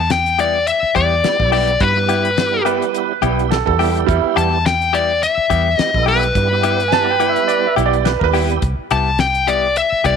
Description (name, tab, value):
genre	straight-eighth soul blues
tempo	106 BPM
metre	4/4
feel	swing 55% on 16ths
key	E minor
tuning	A4 = 440 Hz
part	dark smooth lead guitar	melody	0.0-10.2 s	B4 to A5	-16 LUFS	left 4 dB	overdrive
part	vintage muted fingered electric bass	bass	0.0-10.2 s	B1 to G2	-21 LUFS	right 1 dB	none
part	damped 70s drum kit	drums	0.1-10.2 s	hi-hat, kick drum, snare drum	-22 LUFS	left 4 dB	none
part	direct-recorded clean electric guitar	stabs	0.4-10.2 s	G3 to G4	-23 LUFS	left 12 dB	spring reverb
part	tonewheel organ	accompaniment	1.2-8.6 s	G3 to A4	-22 LUFS	right 16 dB	slow rotary speaker, overdrive, chorus vibrato
part	bright upright piano	second line	2.6-8.5 s	G3 to A5	-19 LUFS	right 14 dB	slapback echo
room	light reverb, small room ambience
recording	1960s-style stereo with parts hard left and right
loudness	-14 LUFS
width	side -6 dB against mid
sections	0.0-10.2 A section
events	none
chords	0.0 Em; 8.6 Cmaj7